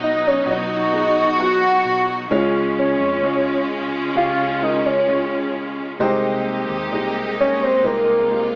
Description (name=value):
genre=pop ballad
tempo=65 BPM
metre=4/4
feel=straight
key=unclear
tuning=A4 = 440 Hz
part: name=soft octave-layered synth lead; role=melody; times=0.0-8.6 s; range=Bb4 to F#5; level=-21 LUFS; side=equal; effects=chorus, phaser
part: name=clear symphonic cello section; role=second line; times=0.0-8.6 s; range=Db4 to F#4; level=-27 LUFS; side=equal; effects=none
part: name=warm upright piano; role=accompaniment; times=0.0-8.6 s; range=B2 to F#5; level=-26 LUFS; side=equal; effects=none
part: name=warm studio string section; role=sustained chords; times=0.0-8.6 s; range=C3 to G4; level=-30 LUFS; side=equal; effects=none
part: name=vintage muted fingered electric bass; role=bass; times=0.0-8.6 s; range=B1 to F2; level=-38 LUFS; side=equal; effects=none
room=wet large studio reverb, RT60 0.9 s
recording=band playing live in one room, AM radio sound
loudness=-19 LUFS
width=mono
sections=0.0-8.6 A section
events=none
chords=0.0 B; 2.3 Db; 6.0 Abmaj7/C